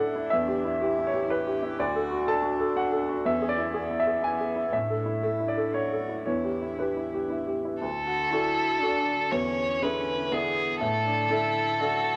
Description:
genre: neoclassical piano and strings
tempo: 121 BPM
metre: 3/4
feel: rubato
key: D major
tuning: A4 = 440 Hz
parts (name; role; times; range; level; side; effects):
- rich cello; second line; 0.0-12.2 s; A3 to G4; -38 LUFS; equal; none
- clear grand piano; accompaniment; 0.0-12.2 s; D2 to A5; -29 LUFS; equal; none
- hollow soft pad; sustained chords; 0.1-12.2 s; D3 to B4; -42 LUFS; equal; chorus
- rich violin; melody; 7.8-12.2 s; G#4 to C#5; -28 LUFS; equal; none
room: moderate large studio reverb, RT60 1.0 s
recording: none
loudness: -27 LUFS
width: mono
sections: 0.0-7.8 A section; 7.8-12.2 A section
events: none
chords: 0.3 Em7; 1.8 D; 3.3 E7; 4.7 Asus4; 6.3 Em7; 7.8 D; 9.3 E7; 10.8 Asus4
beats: | 0.31 0.81 1.30 | 1.79 2.28 2.77 | 3.26 3.75 4.24 | 4.73 5.23 5.74 | 6.26 6.79 7.31 | 7.82 8.32 8.82 | 9.32 9.82 10.31 | 10.81 11.30 11.80

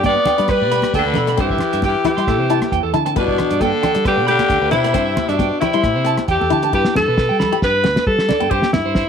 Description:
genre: highlife guitar band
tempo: 135 BPM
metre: 4/4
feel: swing 54% on 16ths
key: G major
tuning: A4 = 438 Hz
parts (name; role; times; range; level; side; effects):
- growling tenor saxophone; second line; 0.0-6.5 s; B2 to B3; -23 LUFS; left 10 dB; none
- electric guitar at the edge of break-up; arpeggios; 0.0-9.1 s; A4 to C6; -23 LUFS; right 11 dB; harmonic tremolo, tape echo
- fingered electric bass; bass; 0.0-9.1 s; D2 to G3; -23 LUFS; equal; none
- cloth-damped thuddy drum kit; drums; 0.0-9.1 s; hi-hat, kick drum, rim click, snare drum; -23 LUFS; equal; none
- congas; percussion; 0.0-8.8 s; none; -25 LUFS; equal; none
- clear alto saxophone; melody; 0.1-9.1 s; D4 to D5; -18 LUFS; equal; none
- flamenco guitar; accompaniment; 0.3-8.7 s; B3 to G4; -24 LUFS; left 12 dB; none
room: moderate plate reverb, RT60 1.3 s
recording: 1960s-style stereo with parts hard left and right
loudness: -14 LUFS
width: side -7 dB against mid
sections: 0.0-6.7 A section; 6.7-9.1 B section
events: none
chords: 0.0 G; 1.4 C/G; 2.3 Am7; 3.2 G; 5.0 C/G; 5.8 Am7; 6.7 G; 8.5 C/G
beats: 0.05 0.49 0.94 | 1.39 1.83 2.28 2.72 | 3.17 3.61 4.06 4.50 | 4.95 5.40 5.84 6.29 | 6.73 7.18 7.62 8.07 | 8.52 8.96

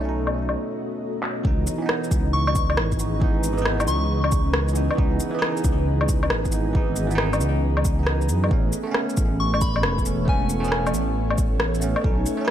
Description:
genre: future garage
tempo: 136 BPM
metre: 4/4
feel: swing 66% on 16ths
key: C# minor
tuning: A4 = 440 Hz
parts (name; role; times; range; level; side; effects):
- bell-like tine electric piano; accompaniment; 0.0-12.5 s; E3 to D#4; -28 LUFS; right 3 dB; phaser, sidechain pumping, ping-pong delay
- ethereal airy pad; sustained chords; 0.0-12.5 s; A3 to D#5; -31 LUFS; left 1 dB; ensemble chorus, built-in reverb, tremolo, sidechain pumping
- dark detuned saw bass; bass; 0.0-12.3 s; E1 to F#2; -24 LUFS; equal; sidechain pumping
- electronic woodblock, handclaps, cabasa, shaker and rim click; drums; 0.3-12.5 s; none; -26 LUFS; left 1 dB; overdrive, low-pass filter on perc, low-pass filter on snare, low-pass filter on room
- electronic kick drum; drums; 1.4-12.2 s; none; -23 LUFS; equal; overdrive
- soft synth bell; melody; 2.3-4.3, 9.4-10.9 s; G#5 to C#6; -29 LUFS; left 2 dB; chorus, phaser, ping-pong delay
room: light reverb, digital ambience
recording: vinyl crackle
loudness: -20 LUFS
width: side -10 dB against mid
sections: 0.0-1.5 A section; 1.5-12.5 B section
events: break 0.6-1.5; drum fill 1.2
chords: 0.0 B7; 1.5 C#m7; 8.5 Aadd9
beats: 0.13 0.57 1.01 | 1.45 1.89 2.33 2.77 | 3.22 3.66 4.10 4.54 | 4.98 5.42 5.86 6.30 | 6.75 7.19 7.63 8.07 | 8.51 8.95 9.39 9.83 | 10.28 10.72 11.16 11.60 | 12.04 12.48

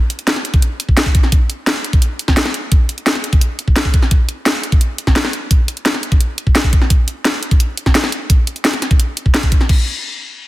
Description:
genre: dark technical drum and bass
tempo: 172 BPM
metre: 4/4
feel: straight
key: none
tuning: none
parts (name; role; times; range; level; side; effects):
- drum and bass drum kit; drums; 0.1-9.8 s; crash cymbal, hi-hat, snare drum; -17 LUFS; equal; overdrive
- electronic kick drum; drums; 0.5-9.8 s; none; -12 LUFS; equal; none
room: light reverb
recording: dense, heavily limited modern master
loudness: -13 LUFS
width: side -17 dB against mid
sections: 0.0-9.7 A section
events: none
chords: none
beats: 0.28 0.62 0.97 | 1.32 1.67 2.02 2.37 | 2.72 3.07 3.42 3.76 | 4.11 4.46 4.81 5.16 | 5.51 5.86 6.21 6.55 | 6.90 7.25 7.60 7.95 | 8.30 8.65 9.00 9.35 | 9.69

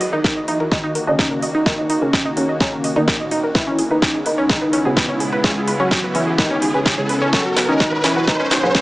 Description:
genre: melodic techno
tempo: 127 BPM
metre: 4/4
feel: straight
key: Eb phrygian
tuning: A4 = 441 Hz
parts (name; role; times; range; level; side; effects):
- resonant sweep polysynth; melody; 0.0-8.8 s; Bb2 to Ab4; -21 LUFS; equal; chorus, cassette tape
- evolving wavetable pad; sustained chords; 0.0-8.8 s; Eb2 to Gb4; -27 LUFS; equal; ensemble chorus, built-in reverb, sidechain pumping
- analog pluck; arpeggios; 0.0-8.8 s; Db4 to Eb5; -22 LUFS; equal; chorus, sidechain pumping, tape echo
- house drum kit; drums; 0.0-8.8 s; hi-hat, snare drum, toms; -22 LUFS; equal; high-pass filter on snare, high-pass filter on hats, high-pass filter on toms, high-pass filter on room
- riser; sound effects; 0.0-8.8 s; none; -27 LUFS; right 1 dB; none
- electronic kick drum; drums; 0.2-8.8 s; none; -19 LUFS; equal; none
- filtered dub chord stab; stabs; 1.1-8.8 s; B2 to Eb4; -26 LUFS; equal; none
room: moderate huge ambient reverb, RT60 4.9 s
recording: high-pass filter, small speaker sound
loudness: -15 LUFS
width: side -19 dB against mid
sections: 0.0-8.8 A section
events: build-up 0.0-8.8; drum fill 0.0-8.8; riser 0.0-8.8; filter sweep on synth pluck 0.0-8.8; filter sweep on analog polysynth 0.0-8.8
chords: 0.0 Ebm; 3.6 Dbm7; 7.3 Badd9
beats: 0.24 0.72 1.19 | 1.66 2.13 2.61 3.08 | 3.55 4.02 4.50 4.97 | 5.44 5.91 6.39 6.86 | 7.33 7.80 8.28 8.75

